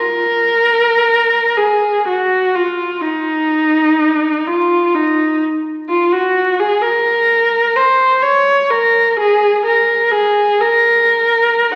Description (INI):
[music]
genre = classical, free, expressive piece for unaccompanied viola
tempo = 50-65 BPM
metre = 3/4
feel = rubato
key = Bb minor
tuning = A4 = 441 Hz
[part]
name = warm viola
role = solo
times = 0.0-11.7 s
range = Eb4 to Db5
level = -14 LUFS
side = equal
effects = none
[sound]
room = wet concert hall reverb, RT60 1.7 s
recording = very old 78 rpm record, vinyl crackle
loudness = -14 LUFS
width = mono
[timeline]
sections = 0.0-11.8 A section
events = none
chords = none